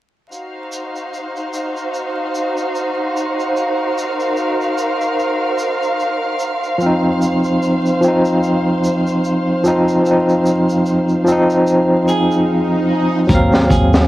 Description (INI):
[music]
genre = trip hop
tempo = 74 BPM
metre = 4/4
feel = swing 57% on 16ths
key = Eb dorian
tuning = A4 = 441 Hz
[part]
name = muted symphonic violin section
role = sustained chords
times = 0.3-13.3 s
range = Eb4 to F5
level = -22 LUFS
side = left 1 dB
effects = cassette tape
[part]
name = egg shaker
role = percussion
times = 0.3-14.1 s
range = none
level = -35 LUFS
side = right 2 dB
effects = none
[part]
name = wind-like tuned noise texture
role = texture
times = 1.5-12.5 s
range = C5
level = -25 LUFS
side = right 4 dB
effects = built-in reverb, cassette tape
[part]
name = barky tine electric piano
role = accompaniment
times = 6.8-14.1 s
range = F3 to F5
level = -14 LUFS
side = equal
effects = tremolo, vintage 12-bit sampler grit, cassette tape, tape echo
[part]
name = swell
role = sound effects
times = 12.0-13.3 s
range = none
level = -23 LUFS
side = right 2 dB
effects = none
[part]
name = semi-hollow electric guitar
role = melody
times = 12.1-14.1 s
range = Ab4 to Bb4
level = -22 LUFS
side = right 3 dB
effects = cassette tape, tape echo
[part]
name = upright bass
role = bass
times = 13.3-14.1 s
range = Eb2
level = -15 LUFS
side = equal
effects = none
[part]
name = crunchy breakbeat drum kit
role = drums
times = 13.3-14.1 s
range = hi-hat, kick drum, snare drum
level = -14 LUFS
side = equal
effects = cassette tape
[sound]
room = light reverb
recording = home recording on cassette, vinyl crackle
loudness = -14 LUFS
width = side -16 dB against mid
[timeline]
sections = 0.3-13.3 A section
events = swell 12.0-13.3; break 12.5-13.3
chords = 0.3 Ebm69; 6.8 F7(no3); 13.3 Ebm69